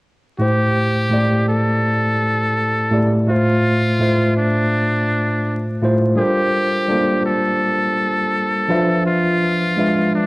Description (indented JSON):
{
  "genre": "hip hop",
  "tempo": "83 BPM",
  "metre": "4/4",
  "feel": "swing 64% on 16ths",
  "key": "unclear",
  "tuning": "A4 = 441 Hz",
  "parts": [
    { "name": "trumpet with metal mute", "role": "melody", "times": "0.4-10.3 s", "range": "D4 to A4", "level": "-20 LUFS", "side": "equal", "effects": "low-pass filter" },
    { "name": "tine electric piano", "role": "accompaniment", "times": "0.4-10.3 s", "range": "A2 to E5", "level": "-17 LUFS", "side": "equal", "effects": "overdrive, fast stereo tremolo, low-pass filter" }
  ],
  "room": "moderate studio reverb, RT60 0.5 s",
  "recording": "worn, warbling old tape, cassette tape, vinyl crackle, warbly pitch drift",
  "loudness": "-15 LUFS",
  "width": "side -23 dB against mid",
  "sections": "0.4-10.3 A section",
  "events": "none",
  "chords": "0.4 Am7; 3.3 Dm7/A; 6.2 Gm11; 8.7 E7b9"
}